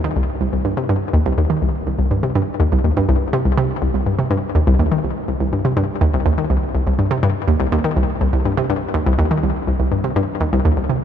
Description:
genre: ambient.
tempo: 123 BPM.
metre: 4/4.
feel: straight.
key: C minor.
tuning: A4 = 439 Hz.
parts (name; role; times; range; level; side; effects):
hollow square pluck; solo; 0.0-10.9 s; C2 to Eb3; -16 LUFS; equal; chorus, ping-pong delay.
room: moderate huge ambient reverb, RT60 7.9 s.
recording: none.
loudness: -16 LUFS.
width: side -9 dB against mid.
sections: 0.0-11.0 A section.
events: none.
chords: none.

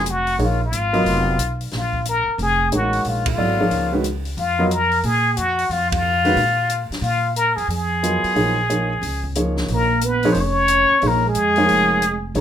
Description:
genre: modal jazz.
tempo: 181 BPM.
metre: 4/4.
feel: swing 64% on 8ths.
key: Bb phrygian.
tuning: A4 = 440 Hz.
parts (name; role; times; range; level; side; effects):
trumpet with plunger mute; melody; 0.0-12.4 s; F4 to Db5; -19 LUFS; left 2 dB; none.
warm baby grand piano; accompaniment; 0.0-12.4 s; Eb3 to Eb5; -22 LUFS; right 1 dB; none.
upright bass; bass; 0.0-12.4 s; F1 to Bb2; -24 LUFS; right 1 dB; none.
open jazz drum kit; drums; 0.1-12.4 s; hi-hat, kick drum, ride cymbal, snare drum; -30 LUFS; left 1 dB; none.
breathy trombone; second line; 9.7-12.4 s; Ab3 to Db4; -24 LUFS; right 3 dB; none.
room: light reverb.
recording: minimal, uncompressed stereo recording.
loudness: -17 LUFS.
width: side -10 dB against mid.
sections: 0.0-12.4 A section.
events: band accent 3.2, 5.9.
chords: 0.0 Bbm7.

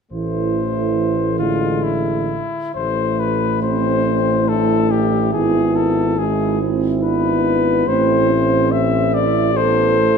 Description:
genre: classical, hymn-like piece for brass band.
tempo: 71 BPM.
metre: 3/4.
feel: rubato.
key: A minor.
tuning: A4 = 443 Hz.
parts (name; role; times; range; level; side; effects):
warm cornet; melody; 0.1-10.2 s; E4 to E5; -20 LUFS; left 7 dB; none.
mellow French horn section; second line; 0.1-10.2 s; C4 to A4; -21 LUFS; right 6 dB; none.
mellow trombone; accompaniment; 0.1-10.2 s; D3 to C4; -23 LUFS; right 1 dB; none.
warm euphonium; accompaniment; 0.1-10.2 s; G#3 to E4; -25 LUFS; equal; none.
clear tuba; bass; 0.1-10.1 s; G#1 to A1; -21 LUFS; right 1 dB; none.
room: moderate concert hall reverb, RT60 2.1 s.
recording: minimal, uncompressed stereo recording.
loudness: -15 LUFS.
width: side -6 dB against mid.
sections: 0.1-2.8 A section; 2.8-10.2 B section.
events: none.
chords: 0.1 Am; 1.4 E7/A; 2.8 Am; 5.3 E7/G#; 7.9 Am.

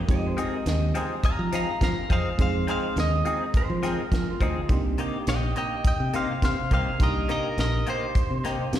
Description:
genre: straight-eighth soul blues.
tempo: 104 BPM.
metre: 4/4.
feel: swing 54% on 16ths.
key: C minor.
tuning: A4 = 440 Hz.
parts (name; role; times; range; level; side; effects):
direct-recorded clean electric guitar; melody; 0.0-8.8 s; Bb4 to Bb5; -29 LUFS; equal; phaser, slapback echo.
reed electric piano; accompaniment; 0.0-8.8 s; Ab3 to Ab4; -34 LUFS; right 3 dB; fast tremolo, slapback echo.
modern bright fingered electric bass; bass; 0.0-8.8 s; Bb1 to F3; -27 LUFS; equal; none.
clean lap steel guitar; second line; 0.1-5.1 s; C4 to Eb5; -34 LUFS; right 2 dB; slapback echo.
tight funk drum kit; drums; 0.1-8.8 s; hi-hat, kick drum, snare drum; -25 LUFS; equal; none.
direct-recorded clean electric guitar; stabs; 0.4-8.6 s; C3 to Ab4; -32 LUFS; left 4 dB; phaser, slapback echo.
room: studio ambience.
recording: live gig heard through the venue's PA, recital hall reverb.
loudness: -23 LUFS.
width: side -11 dB against mid.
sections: 0.0-8.8 A section.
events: none.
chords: 0.1 Fm7; 4.7 Cm7.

